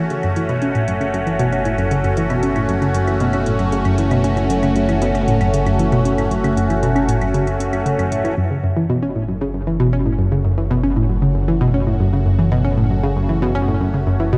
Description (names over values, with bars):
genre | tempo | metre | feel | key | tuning
ambient, sequencer-driven space music | 116 BPM | 4/4 | straight | F# minor | A4 = 442 Hz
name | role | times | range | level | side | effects
phased analog pad | sustained chords | 0.0-14.4 s | A3 to F#4 | -24 LUFS | equal | phaser, chorus
analog pluck | riff | 0.0-14.4 s | F#2 to C#4 | -20 LUFS | equal | chorus, tape echo
fat analog bass | bass | 0.0-14.4 s | F#1 | -25 LUFS | equal | none
electronic hi-hat and claves | percussion | 0.1-8.4 s | none | -38 LUFS | equal | tape echo
room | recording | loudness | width
moderate lush hall reverb, RT60 2.4 s | dreamy mix soaked in reverb | -18 LUFS | mono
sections
0.0-8.4 A section; 8.4-14.4 B section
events
fade-in on analog synth bass 0.0-8.4; fade-in on analog synth pad 8.4-14.4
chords
0.0 F#m